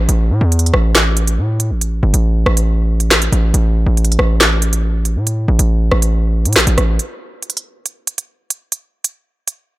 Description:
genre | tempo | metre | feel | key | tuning
hip hop, drill | 139 BPM | 4/4 | half-time | unclear | A4 = 441 Hz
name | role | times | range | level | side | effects
distorted 808-style bass | bass | 0.0-7.0 s | G1 to A2 | -13 LUFS | equal | distortion
drill drum kit | drums | 0.1-9.6 s | handclaps, hi-hat, rim click, snare drum | -16 LUFS | right 1 dB | none
room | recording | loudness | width
little or no reverb | none | -13 LUFS | side -18 dB against mid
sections
0.0-7.0 A section; 7.0-9.8 B section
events
none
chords
none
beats
| 0.09 0.52 0.95 1.38 | 1.81 2.25 2.68 3.11 | 3.54 3.97 4.40 4.84 | 5.27 5.70 6.13 6.56 | 6.99 7.43 7.86 8.29 | 8.72 9.15

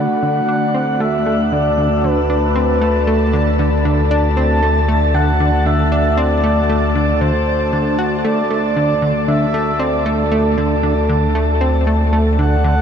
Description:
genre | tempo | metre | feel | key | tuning
ambient, sequencer-driven space music | 116 BPM | 4/4 | straight | unclear | A4 = 442 Hz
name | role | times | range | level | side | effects
breathy flute-like synth lead | melody | 0.0-12.8 s | A4 to A5 | -19 LUFS | right 1 dB | chorus, tremolo, ping-pong delay
sweeping resonant pad | sustained chords | 0.0-12.8 s | D3 to B5 | -19 LUFS | left 1 dB | chorus
plucky analog bass | riff | 0.0-12.8 s | D3 to F#4 | -20 LUFS | equal | ping-pong delay
analog drone | bass | 1.3-12.8 s | D2 | -19 LUFS | equal | chorus
room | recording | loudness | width
wet shimmer reverb, RT60 8.0 s | dark, warm production | -13 LUFS | side -8 dB against mid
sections
0.0-12.8 A section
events
none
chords
0.0 D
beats
0.49 1.00 1.52 | 2.04 2.56 3.07 3.59 | 4.11 4.62 5.14 5.66 | 6.18 6.69 7.21 7.73 | 8.24 8.76 9.28 9.80 | 10.31 10.83 11.35 11.87 | 12.38

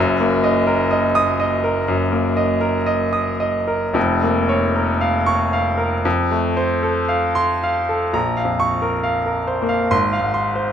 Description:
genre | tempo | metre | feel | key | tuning
classical, romantic character piece for solo piano | 54-70 BPM | 4/4 | rubato | Bb minor | A4 = 439 Hz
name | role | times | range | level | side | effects
bright grand piano | solo | 0.0-10.7 s | F1 to Eb6 | -16 LUFS | equal | none
room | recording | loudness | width
moderate recital hall reverb, RT60 1.5 s | close, detailed microphones | -16 LUFS | side -8 dB against mid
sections
0.0-8.1 A section; 8.1-10.7 B section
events
none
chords
0.0 Ebm/Gb; 4.0 Bbm/F; 6.0 F; 8.1 Bbm; 9.9 Fm/Ab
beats
0.90 1.88 2.88 | 3.95 5.01 6.05 7.10 | 8.14 9.04 9.92

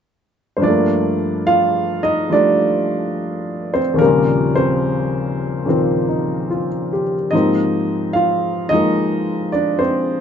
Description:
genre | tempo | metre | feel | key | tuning
solo jazz | 72 BPM | 4/4 | swing 67% on 8ths, rubato | G minor | A4 = 440 Hz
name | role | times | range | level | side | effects
warm upright piano | solo | 0.6-10.2 s | Eb2 to F5 | -15 LUFS | equal | none
room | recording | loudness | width
moderate club reverb, RT60 0.8 s | nothing above 7.8 kHz | -15 LUFS | side -8 dB against mid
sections
0.6-10.2 A section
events
none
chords
0.0 N.C.; 0.6 Gm9; 4.0 Eb13; 7.3 Ab69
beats
| 0.63 1.48 2.32 3.17 | 4.00 4.84 5.67 6.49 | 7.32 8.16 8.98 9.81

